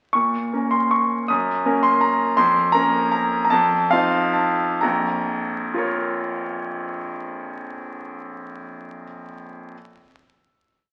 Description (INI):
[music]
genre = classical, piano waltz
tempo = 122-176 BPM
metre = 3/4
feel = rubato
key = Bb minor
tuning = A4 = 440 Hz
[part]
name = bright grand piano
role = solo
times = 0.1-9.8 s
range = Bb1 to Eb6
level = -22 LUFS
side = equal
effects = none
[sound]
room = wet large studio reverb, RT60 1.3 s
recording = very old 78 rpm record, vinyl crackle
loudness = -21 LUFS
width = mono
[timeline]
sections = 0.1-4.8 A section; 4.8-7.6 final chord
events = slowing down 1.8-4.8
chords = 0.1 Bbm; 1.3 Gb6; 2.4 Bbm/F; 3.5 F7; 4.8 Bbm